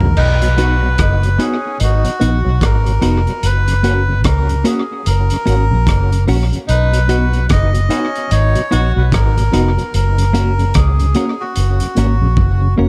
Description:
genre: roots reggae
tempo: 74 BPM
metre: 4/4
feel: swing 60% on 16ths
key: unclear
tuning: A4 = 440 Hz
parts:
  - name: melodica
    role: melody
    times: 0.0-12.7 s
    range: F#4 to D#5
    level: -24 LUFS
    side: equal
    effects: tape echo
  - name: tonewheel organ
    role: accompaniment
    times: 0.0-12.9 s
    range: F#2 to F#4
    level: -28 LUFS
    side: equal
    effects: overdrive, chorus vibrato, slow rotary speaker, tape echo
  - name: vintage muted fingered electric bass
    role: bass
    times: 0.0-12.9 s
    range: E#1 to C#2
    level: -16 LUFS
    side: equal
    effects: none
  - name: crunchy breakbeat drum kit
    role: drums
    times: 0.0-12.6 s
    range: crash cymbal, hi-hat, kick drum, rim click, toms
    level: -22 LUFS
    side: equal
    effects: tape echo
  - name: breathy tenor saxophone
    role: second line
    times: 0.2-9.0 s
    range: C#4 to F#4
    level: -26 LUFS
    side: equal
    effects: tape echo
  - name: semi-hollow electric guitar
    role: accompaniment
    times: 0.6-12.9 s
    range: A#3 to B4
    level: -25 LUFS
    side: equal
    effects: tape echo
  - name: mellow reed electric piano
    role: stabs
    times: 0.6-12.9 s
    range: A#3 to F#4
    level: -23 LUFS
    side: equal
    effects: none
room: little or no reverb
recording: echo-heavy mix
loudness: -15 LUFS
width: mono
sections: 0.2-12.9 A section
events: drum fill 0.0, 12.4-12.9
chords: 0.2 B; 3.4 F#; 6.7 B; 9.9 F#

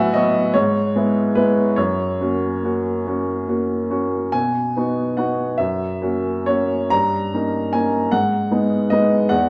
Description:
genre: classical, romantic character piece for solo piano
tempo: 44-52 BPM (dotted quarters)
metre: 6/8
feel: rubato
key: unclear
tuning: A4 = 440 Hz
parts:
  - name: clear upright piano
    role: solo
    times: 0.0-9.5 s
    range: E2 to A#5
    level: -20 LUFS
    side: equal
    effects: none
room: wet recital hall reverb, RT60 1.4 s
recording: dark, warm production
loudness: -20 LUFS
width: mono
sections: 0.0-9.5 A section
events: none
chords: 0.0 B5/A; 0.5 E/G#; 1.8 F#; 4.3 B; 5.6 F#7; 6.9 D#7/G; 8.1 G#m

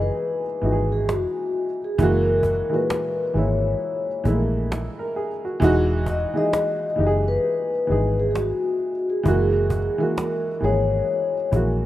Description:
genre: lo-fi hip hop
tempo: 66 BPM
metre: 4/4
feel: swing 61% on 16ths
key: E lydian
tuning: A4 = 437 Hz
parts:
  - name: vibraphone with soft mallets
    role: melody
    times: 0.0-11.5 s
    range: F#4 to D#5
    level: -24 LUFS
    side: left 2 dB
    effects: none
  - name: warm upright piano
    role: accompaniment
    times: 0.0-11.9 s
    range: A#2 to A#4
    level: -24 LUFS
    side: right 1 dB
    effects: none
  - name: vintage muted fingered electric bass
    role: bass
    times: 0.0-11.9 s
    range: E1 to A#1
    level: -23 LUFS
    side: equal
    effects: none
  - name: cajon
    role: drums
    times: 0.2-11.9 s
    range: none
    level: -28 LUFS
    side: equal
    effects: none
room: small room reverb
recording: rough home demo mix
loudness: -20 LUFS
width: side -14 dB against mid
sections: 0.0-11.9 A section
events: none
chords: 0.0 Emaj9; 2.0 F#9; 5.6 Emaj9; 9.3 F#9

